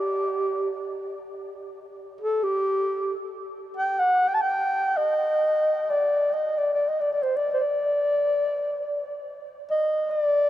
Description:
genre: Arabic maqam ensemble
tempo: free time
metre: none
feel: none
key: unclear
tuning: A4 = 437 Hz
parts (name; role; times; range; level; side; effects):
- breathy clarinet; solo; 0.0-10.5 s; G4 to A5; -22 LUFS; equal; none
room: wet huge ambient reverb, RT60 8.0 s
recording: heard from further back in the room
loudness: -22 LUFS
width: side -13 dB against mid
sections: 0.0-3.3 A section; 3.3-10.5 A section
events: none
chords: none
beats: free time

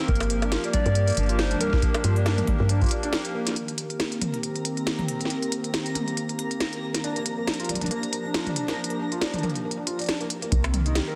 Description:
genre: IDM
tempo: 138 BPM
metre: 4/4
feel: swing 56% on 16ths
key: C minor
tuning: A4 = 439 Hz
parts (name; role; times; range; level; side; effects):
- hollow soft pad; sustained chords; 0.0-11.2 s; Eb3 to Bb4; -33 LUFS; equal; chorus
- felt-muted upright piano; arpeggios; 0.0-3.5, 7.0-11.1 s; Bb3 to D5; -34 LUFS; equal; tape echo
- soft struck synth lead; melody; 0.1-3.1 s; Bb4 to D5; -34 LUFS; equal; chorus, tremolo, tape echo
- woody FM bass; bass; 0.1-2.9, 10.5-11.0 s; G1 to G2; -26 LUFS; equal; none
- electronic kick drum; drums; 0.1-2.9, 10.5-10.6 s; none; -27 LUFS; equal; studio reverb
- organic electronic drum kit; drums; 0.1-11.1 s; bongos, hi-hat, snare drum, toms; -31 LUFS; equal; studio reverb
- twinkling granular texture; texture; 4.2-10.5 s; Bb4 to Bb5; -40 LUFS; equal; built-in reverb
room: light reverb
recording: dense, heavily limited modern master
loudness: -26 LUFS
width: mono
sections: 0.0-3.6 A section; 3.6-10.5 B section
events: break 3.1-3.6; filter sweep on analog synth pad 3.6-10.5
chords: 0.1 Gm7; 3.6 Cm7; 7.0 Gm7; 10.5 Cm7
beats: | 0.09 0.52 0.95 1.39 | 1.82 2.26 2.69 3.13 | 3.56 4.00 4.43 4.87 | 5.30 5.74 6.17 6.61 | 7.04 7.48 7.91 8.35 | 8.78 9.21 9.65 10.09 | 10.52 10.95

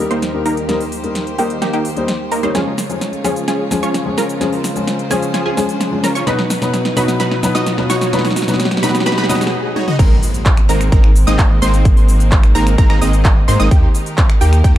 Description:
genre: EDM, festival progressive house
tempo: 129 BPM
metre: 4/4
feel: straight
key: unclear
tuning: A4 = 440 Hz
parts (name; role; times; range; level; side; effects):
- warm baby grand piano; accompaniment; 0.0-9.5 s; B2 to Db5; -20 LUFS; left 3 dB; sidechain pumping, tape echo
- rich chamber string section; sustained chords; 0.0-14.8 s; Eb2 to Db5; -25 LUFS; equal; sidechain pumping
- riser and impact; sound effects; 1.0-11.9 s; none; -27 LUFS; right 1 dB; none
- wide unison pluck; arpeggios; 0.1-14.8 s; G5 to D#6; -25 LUFS; right 1 dB; sidechain pumping, tape echo
- supersaw stab; riff; 0.1-14.8 s; Ab3 to D#5; -21 LUFS; right 1 dB; sidechain pumping, low-pass filter, tape echo
- big-room dance drum kit; drums; 0.1-14.7 s; cabasa, crash cymbal, finger snaps, handclaps, hi-hat, snare drum, toms; -21 LUFS; right 1 dB; overdrive, studio ambience
- saturated sub bass; bass; 10.0-14.8 s; Ab1 to Ab2; -14 LUFS; equal; sidechain pumping
- electronic kick drum; drums; 10.0-14.7 s; none; -12 LUFS; equal; overdrive, studio ambience
room: light reverb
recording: dark, warm production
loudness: -12 LUFS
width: side -13 dB against mid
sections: 0.0-10.0 A section; 10.0-14.8 B section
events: build-up 0.0-10.0; drum fill 0.0-9.5, 9.8; filter sweep on supersaw synth 0.0-10.0; filter sweep on synth pluck 0.0-10.0; break 9.5-10.0; drop 10.0-14.8; impact 10.0-11.9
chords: 0.0 Eb; 2.6 Db; 6.3 B; 10.0 Abadd9; 13.7 Eb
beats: 0.23 | 0.69 1.16 1.62 2.08 | 2.55 3.02 3.48 3.95 | 4.41 4.88 5.34 5.81 | 6.27 6.74 7.20 7.67 | 8.13 8.60 9.06 9.53 | 9.99 10.46 10.92 11.39 | 11.85 12.32 12.78 13.25 | 13.71 14.18 14.64

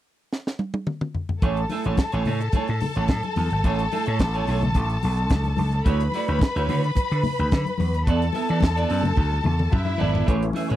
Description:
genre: disco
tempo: 108 BPM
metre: 4/4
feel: straight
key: A major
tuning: A4 = 444 Hz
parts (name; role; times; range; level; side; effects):
- tight funk drum kit; drums; 0.3-10.8 s; hi-hat, kick drum, snare drum, toms; -22 LUFS; equal; none
- rich studio violin section; second line; 1.4-10.3 s; E4 to B5; -28 LUFS; left 1 dB; none
- clean electric guitar; accompaniment; 1.4-10.8 s; A3 to E5; -28 LUFS; right 6 dB; lush chorus
- vintage slap bass; bass; 1.4-10.8 s; G#1 to E3; -23 LUFS; equal; none
- congas; percussion; 1.4-10.7 s; none; -30 LUFS; left 4 dB; none
- bright tonewheel organ; sustained chords; 10.3-10.8 s; E3 to C#4; -28 LUFS; left 2 dB; chorus vibrato, fast rotary speaker
room: little or no reverb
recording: dry, close 1970s-style studio recording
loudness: -20 LUFS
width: side -13 dB against mid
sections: 0.0-1.4 A section; 1.4-10.3 B section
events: drum fill 0.3-1.4, 9.2-10.3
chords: 0.0 N.C.; 1.4 Amaj7; 5.9 Dmaj9; 8.1 E7sus4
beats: 0.31 0.87 | 1.43 1.98 2.54 3.09 | 3.65 4.20 4.75 5.31 | 5.86 6.41 6.97 7.52 | 8.07 8.62 9.18 9.73 | 10.28

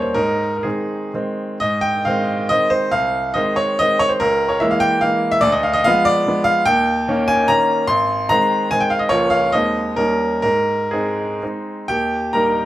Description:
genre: classical, romantic triple-time dance for piano with dotted rhythms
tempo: 116-155 BPM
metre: 3/4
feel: rubato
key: Ab major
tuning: A4 = 440 Hz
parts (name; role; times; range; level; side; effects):
- clear baby grand piano; solo; 0.0-12.7 s; Ab1 to C6; -15 LUFS; equal; none
room: moderate recital hall reverb, RT60 1.4 s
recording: close, detailed microphones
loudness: -15 LUFS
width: side -14 dB against mid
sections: 0.0-1.6 A section; 1.6-11.9 B section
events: none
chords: 0.2 Ab; 2.9 Ab/C; 4.2 Bbm7b5/Db; 5.4 Ddim7; 6.7 Eb7; 7.9 Ab; 9.1 Bbm/Db; 9.5 Ab/Eb; 10.0 Eb7; 10.4 Ab; 11.9 Eb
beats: | 0.16 0.64 1.14 | 1.61 2.06 2.50 | 2.92 3.35 3.79 | 4.20 4.61 5.03 | 5.43 5.86 6.27 | 6.66 7.07 7.48 | 7.88 8.29 8.71 | 9.11 9.53 9.97 | 10.43 10.93 11.42 | 11.89 12.34

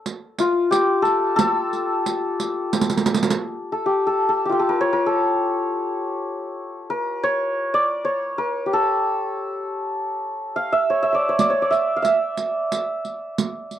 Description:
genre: Persian modal ensemble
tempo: 60 BPM (dotted quarters)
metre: 6/8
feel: straight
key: A dastgah homayun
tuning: A4 = 438 Hz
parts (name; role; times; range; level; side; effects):
- santur; melody; 0.0-13.8 s; F4 to F5; -20 LUFS; left 1 dB; none
- riq; percussion; 0.1-3.4, 11.4-13.8 s; none; -23 LUFS; right 5 dB; none
room: little or no reverb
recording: dry, close 1970s-style studio recording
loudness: -19 LUFS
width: side -10 dB against mid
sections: 0.0-3.4 A section; 3.4-13.8 B section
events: drum fill 2.7-3.4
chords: none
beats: 0.38 | 1.38 2.38 | 3.38 4.38 | 5.38 6.38 | 7.38 8.38 | 9.38 10.38 | 11.38 12.38 | 13.38

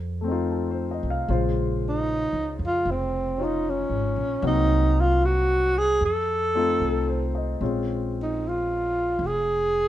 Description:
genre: jazz ballad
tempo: 76 BPM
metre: 4/4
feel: swing 68% on 8ths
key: Bb minor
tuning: A4 = 440 Hz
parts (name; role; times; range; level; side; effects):
- upright bass; bass; 0.0-9.9 s; F1 to F2; -27 LUFS; equal; none
- warm concert grand piano; accompaniment; 0.2-9.9 s; Db3 to F5; -29 LUFS; left 4 dB; none
- breathy alto saxophone; melody; 1.9-9.9 s; C4 to A4; -23 LUFS; right 1 dB; none
room: light reverb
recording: minimal, uncompressed stereo recording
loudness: -22 LUFS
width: side -12 dB against mid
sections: 0.0-7.6 A section; 7.6-9.9 B section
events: alto saxophone solo 7.6-9.9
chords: 0.0 F7; 1.3 Bbm9; 4.4 Cm7b5; 6.0 F7; 7.6 Bbm9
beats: 0.49 | 1.28 2.06 2.85 3.63 | 4.42 5.21 6.00 6.80 | 7.61 8.40 9.19

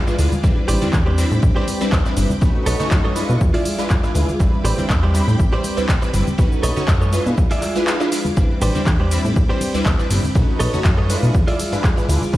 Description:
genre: filtered disco house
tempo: 121 BPM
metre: 4/4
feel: swing 54% on 16ths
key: A minor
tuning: A4 = 440 Hz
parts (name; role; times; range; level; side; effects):
- funky polysynth comp; accompaniment; 0.0-12.4 s; G3 to B5; -23 LUFS; equal; chorus, phaser, sidechain pumping
- string machine, full ensemble; sustained chords; 0.0-12.4 s; C4 to D6; -29 LUFS; equal; ensemble chorus, sidechain pumping
- plucky analog bass; bass; 0.0-12.4 s; G1 to B2; -19 LUFS; equal; tube saturation, sidechain pumping
- direct-recorded clean electric guitar; riff; 0.1-12.1 s; F4 to E5; -26 LUFS; right 3 dB; sidechain pumping
- house drum kit; drums; 0.1-12.4 s; cabasa, handclaps, hi-hat, ride cymbal; -27 LUFS; equal; overdrive
- maracas and congas; percussion; 0.1-12.4 s; none; -28 LUFS; left 1 dB; sidechain pumping on perc
- electronic kick drum; drums; 0.4-12.4 s; none; -17 LUFS; equal; none
room: light reverb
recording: played on a big sound system in a bare room, stone room reverb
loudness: -15 LUFS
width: side -16 dB against mid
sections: 0.0-12.4 A section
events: none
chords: 0.4 Am11; 2.4 B9; 3.4 E7b9; 4.4 Am11; 6.4 B9; 7.4 E7b9; 8.4 Am11; 10.4 B9; 11.3 E7b9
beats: | 0.43 0.93 1.43 1.92 | 2.42 2.91 3.41 3.91 | 4.40 4.90 5.39 5.89 | 6.38 6.88 7.38 7.87 | 8.37 8.86 9.36 9.86 | 10.35 10.85 11.34 11.84 | 12.34

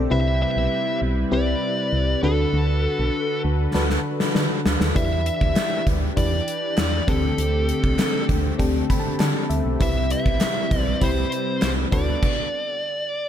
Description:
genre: 1980s-style pop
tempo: 99 BPM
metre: 4/4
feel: straight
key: unclear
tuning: A4 = 440 Hz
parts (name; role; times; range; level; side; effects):
- FM electric piano; accompaniment; 0.0-12.3 s; C3 to B5; -26 LUFS; left 3 dB; chorus
- lush unison pad; sustained chords; 0.0-12.2 s; D3 to B4; -29 LUFS; equal; chorus
- solid FM bass; bass; 0.0-12.2 s; B1 to D3; -24 LUFS; right 1 dB; none
- fuzz lead guitar; melody; 0.1-13.3 s; A4 to E5; -26 LUFS; right 1 dB; distortion
- gated 80s drum kit; drums; 3.7-12.4 s; crash cymbal, hi-hat, kick drum, snare drum; -23 LUFS; equal; gated reverb
- group handclap; percussion; 5.6-11.8 s; none; -41 LUFS; right 8 dB; none
room: light reverb, small room ambience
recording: none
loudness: -19 LUFS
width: side -10 dB against mid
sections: 0.0-13.3 A section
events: drum fill 3.7-5.0; FM electric piano fill 8.6-9.8; stop 12.2-13.3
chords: 0.1 Cmaj7; 2.2 Bm7; 5.0 Em7; 7.1 D7sus4; 9.8 Cmaj7; 11.9 Bm7/D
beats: | 0.11 0.72 1.32 1.93 | 2.53 3.14 3.75 4.35 | 4.96 5.56 6.17 6.78 | 7.38 7.99 8.60 9.20 | 9.81 10.41 11.02 11.62 | 12.23 12.84

